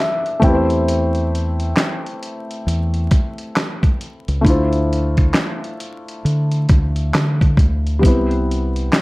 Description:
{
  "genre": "lo-fi hip hop",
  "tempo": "67 BPM",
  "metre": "4/4",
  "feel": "swing 61% on 16ths",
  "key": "unclear",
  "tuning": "A4 = 440 Hz",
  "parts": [
    { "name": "felt-muted upright piano", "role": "accompaniment", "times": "0.0-9.0 s", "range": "G3 to G5", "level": "-21 LUFS", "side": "left 1 dB", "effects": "cassette tape, low-pass filter" },
    { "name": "dusty soul sampler-style drum kit", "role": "drums", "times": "0.3-9.0 s", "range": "handclaps, hi-hat, kick drum, snare drum", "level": "-17 LUFS", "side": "equal", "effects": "none" },
    { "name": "deep dub fingered electric bass", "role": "bass", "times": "0.4-8.9 s", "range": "C2 to D3", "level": "-18 LUFS", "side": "equal", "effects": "none" }
  ],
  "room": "little or no reverb",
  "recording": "dark, warm production, vinyl crackle",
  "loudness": "-15 LUFS",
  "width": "side -22 dB against mid",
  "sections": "0.0-9.0 A section",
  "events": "felt piano fill 0.0-0.9",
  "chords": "0.4 Am7/E; 4.4 Dm9; 8.0 Cmaj7",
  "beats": "| 0.87 1.76 2.66 3.55 | 4.45 5.34 6.24 7.14 | 8.03 8.93"
}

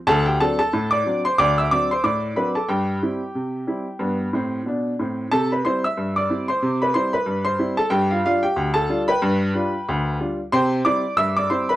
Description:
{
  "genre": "ragtime piano",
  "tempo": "92 BPM",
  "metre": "2/4",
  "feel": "swing 57% on 16ths",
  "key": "C major",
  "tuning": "A4 = 437 Hz",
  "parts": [
    { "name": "clear upright piano", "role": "solo", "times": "0.1-11.8 s", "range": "D2 to E6", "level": "-19 LUFS", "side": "equal", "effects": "none" }
  ],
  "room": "light reverb",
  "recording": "close, detailed microphones",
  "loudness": "-19 LUFS",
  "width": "side -15 dB against mid",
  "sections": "0.0-5.3 A section; 5.3-11.8 B section",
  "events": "none",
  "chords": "0.1 D7; 2.7 C/G; 4.0 G; 5.3 C; 7.9 G7; 10.5 C",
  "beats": "| 0.08 0.73 | 1.38 2.03 | 2.69 3.34 | 4.00 4.66 | 5.31 5.97 | 6.62 7.27 | 7.92 8.57 | 9.22 9.88 | 10.52 11.18"
}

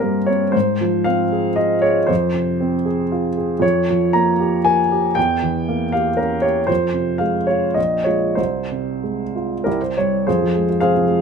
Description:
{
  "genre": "classical, romantic character piece for solo piano",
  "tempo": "89-121 BPM",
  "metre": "3/4",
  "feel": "rubato",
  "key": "F minor",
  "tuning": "A4 = 441 Hz",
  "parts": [
    { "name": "warm upright piano", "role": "solo", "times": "0.0-11.2 s", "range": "Bb1 to Bb5", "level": "-16 LUFS", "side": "equal", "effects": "none" }
  ],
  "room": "light reverb",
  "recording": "none",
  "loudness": "-16 LUFS",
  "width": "side -6 dB against mid",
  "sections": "0.0-10.3 A section",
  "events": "none",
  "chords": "0.0 C5/G; 0.5 Fm/Ab; 2.1 Fm; 3.6 Gm7b5/F; 5.2 Edim7; 6.7 Fm; 7.8 Bbm7; 8.4 Fm/C; 9.7 C; 10.3 Fm",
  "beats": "0.01 | 0.54 1.07 1.58 | 2.10 2.61 3.12 | 3.62 4.14 4.66 | 5.16 5.68 6.20 | 6.69 7.21 7.77 | 8.38 9.04 9.66 | 10.27 10.81"
}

